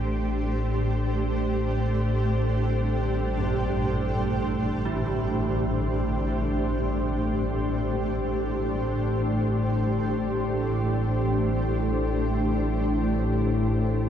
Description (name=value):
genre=dark ambient drone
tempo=free time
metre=none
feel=none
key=A minor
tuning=A4 = 438 Hz
part: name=granular cloud pad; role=sustained chords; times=0.0-14.1 s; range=A3 to C5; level=-27 LUFS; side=equal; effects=built-in reverb
part: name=analog drone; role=drone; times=0.0-14.1 s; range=A1 to A2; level=-26 LUFS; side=equal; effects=lush chorus
part: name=old church bells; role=arpeggios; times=3.4-10.6 s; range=G2 to E4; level=-34 LUFS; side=right 2 dB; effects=diffuse ambient delay
part: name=impact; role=percussion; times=4.9-5.0 s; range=none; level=barely audible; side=none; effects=none
room=wet cathedral reverb, RT60 6.6 s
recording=dark, warm production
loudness=-23 LUFS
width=side -9 dB against mid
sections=0.0-4.9 A section; 4.9-14.1 B section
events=filter sweep on synth drone 0.0-4.9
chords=0.0 D5/A; 4.9 Am7